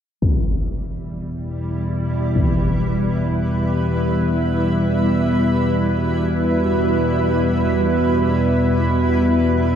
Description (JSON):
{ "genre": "dark ambient drone", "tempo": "free time", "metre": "none", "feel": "none", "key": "E minor", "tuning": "A4 = 440 Hz", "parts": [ { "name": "granular cloud pad", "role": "sustained chords", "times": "1.1-9.8 s", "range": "G3 to E5", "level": "-21 LUFS", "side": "right 1 dB", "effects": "built-in reverb" }, { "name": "analog drone", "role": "drone", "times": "0.9-9.8 s", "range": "E2 to B2", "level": "-19 LUFS", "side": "equal", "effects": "chorus" }, { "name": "impact", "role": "percussion", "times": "0.2-2.6 s", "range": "none", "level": "-22 LUFS", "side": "left 1 dB", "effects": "low-pass filter on sfx" }, { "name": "bubbling stepped-filter texture", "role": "texture", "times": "0.3-9.8 s", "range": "E4 to E5", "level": "-39 LUFS", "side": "equal", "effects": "none" } ], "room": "wet plate reverb, RT60 2.3 s", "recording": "dreamy mix soaked in reverb", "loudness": "-16 LUFS", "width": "side -8 dB against mid", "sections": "0.2-9.8 A section", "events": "none", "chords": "0.2 Em", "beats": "free time" }